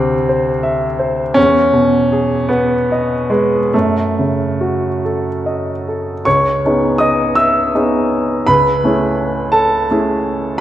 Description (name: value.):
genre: classical, impressionist solo piano.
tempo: 46-58 BPM (dotted quarters).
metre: 6/8.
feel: rubato.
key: C# minor.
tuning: A4 = 439 Hz.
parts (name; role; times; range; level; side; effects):
clear baby grand piano; solo; 0.0-10.6 s; C#2 to E6; -13 LUFS; equal; none.
room: moderate scoring stage reverb, RT60 1.7 s.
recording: none.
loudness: -13 LUFS.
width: side -12 dB against mid.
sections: 0.0-6.3 A section; 6.3-10.6 B section.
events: none.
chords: 0.0 Cadd9/D; 1.4 Emaj7; 3.7 F#m6; 6.3 C#m9; 8.5 Amaj9/C#.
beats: 0.28 | 1.37 2.50 | 3.73 5.01 | 6.25 7.37 | 8.48 9.54 | 10.60.